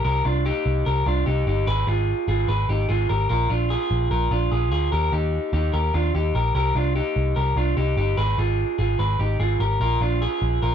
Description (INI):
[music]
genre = indie pop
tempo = 148 BPM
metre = 4/4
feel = straight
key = unclear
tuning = A4 = 439 Hz
[part]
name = electric guitar through a small old amp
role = arpeggios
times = 0.0-10.7 s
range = D4 to Cb5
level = -23 LUFS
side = equal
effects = none
[part]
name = vintage muted picked electric bass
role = bass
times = 0.0-10.7 s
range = G1 to Eb2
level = -22 LUFS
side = equal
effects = none
[sound]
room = little or no reverb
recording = dry, close 1970s-style studio recording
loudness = -20 LUFS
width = side -8 dB against mid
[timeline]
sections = 0.0-10.7 A section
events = none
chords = 0.0 Cm7; 1.7 Abm6; 3.3 Bb5; 4.9 Ebmaj7; 6.6 Cm7; 8.2 Abm6; 9.8 Bb5